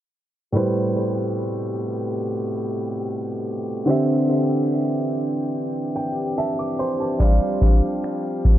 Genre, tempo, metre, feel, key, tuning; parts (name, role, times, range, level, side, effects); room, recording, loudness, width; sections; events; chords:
contemporary R&B; 72 BPM; 4/4; straight; A minor; A4 = 440 Hz
clear baby grand piano; accompaniment; 0.5-8.6 s; A2 to D6; -22 LUFS; right 1 dB; analog delay
mellow brass ensemble; sustained chords; 0.5-8.6 s; B2 to G4; -27 LUFS; left 1 dB
booming analog drum machine; drums; 7.2-8.6 s; finger snaps, kick drum; -16 LUFS; equal
light reverb, small room reverb; echo-heavy mix, low-pass filter; -20 LUFS; side -13 dB against mid
0.5-8.6 A section
filter sweep 0.5-8.6; grand piano fill 5.5-7.2
0.5 Am9; 3.9 D9sus4; 7.2 G7sus4